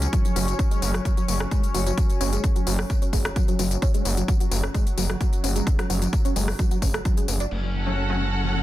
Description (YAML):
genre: driving peak-time techno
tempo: 130 BPM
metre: 4/4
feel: straight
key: F# minor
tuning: A4 = 440 Hz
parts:
  - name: gritty driven synth bass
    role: bass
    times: 0.0-8.6 s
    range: F#1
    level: -25 LUFS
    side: equal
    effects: sidechain pumping
  - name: analog drone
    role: drone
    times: 0.0-8.6 s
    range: F#3 to C#4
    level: -32 LUFS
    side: equal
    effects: chorus, sidechain pumping
  - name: techno drum kit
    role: drums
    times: 0.0-7.6 s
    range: crash cymbal, hi-hat, rim click, tambourine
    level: -31 LUFS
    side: left 3 dB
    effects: overdrive, low-pass filter on hats, low-pass filter on cymbals, low-pass filter on perc, low-pass filter on snare
  - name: tight sequenced synth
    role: riff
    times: 0.1-8.6 s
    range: F#3 to D4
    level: -30 LUFS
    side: right 1 dB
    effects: chorus, phaser, sidechain pumping, dub echo
  - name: electronic kick drum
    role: drums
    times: 0.1-7.1 s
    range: none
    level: -22 LUFS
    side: equal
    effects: overdrive
  - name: warm studio string section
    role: texture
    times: 7.5-8.6 s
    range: C#4 to F#5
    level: -28 LUFS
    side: right 1 dB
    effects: sidechain pumping
  - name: rave stab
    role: stabs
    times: 7.9-8.3 s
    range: F#3 to C#4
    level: -30 LUFS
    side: left 2 dB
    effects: chorus, built-in reverb, sidechain pumping, tape echo
room: light reverb, digital ambience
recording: dense, heavily limited modern master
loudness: -21 LUFS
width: side -15 dB against mid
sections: 0.0-7.5 A section; 7.5-8.6 B section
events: filter sweep on synth arpeggio sound 0.0-7.5, 7.5-8.6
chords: 0.0 F#5; 7.5 F#m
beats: | 0.13 0.59 1.05 1.51 | 1.98 2.44 2.90 3.36 | 3.82 4.28 4.75 5.21 | 5.67 6.13 6.59 7.05 | 7.51 7.98 8.44